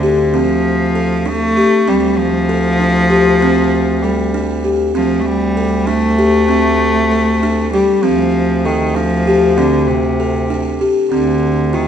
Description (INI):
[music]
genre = contemporary instrumental, chamber music in an uneven meter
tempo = 195 BPM (eighths)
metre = 5/8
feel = straight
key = D minor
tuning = A4 = 442 Hz
[part]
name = rich cello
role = second line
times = 0.0-11.9 s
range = C3 to A3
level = -16 LUFS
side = left 1 dB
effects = none
[part]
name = buzzing kalimba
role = arpeggios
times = 0.0-11.9 s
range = C4 to A4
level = -15 LUFS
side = equal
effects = none
[part]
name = clear bass clarinet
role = bass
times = 0.0-11.9 s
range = D2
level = -20 LUFS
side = right 1 dB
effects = none
[sound]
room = moderate scoring stage reverb, RT60 1.8 s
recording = nothing above 10.5 kHz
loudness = -12 LUFS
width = side -8 dB against mid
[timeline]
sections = 0.0-11.1 A section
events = none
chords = 0.0 Dm7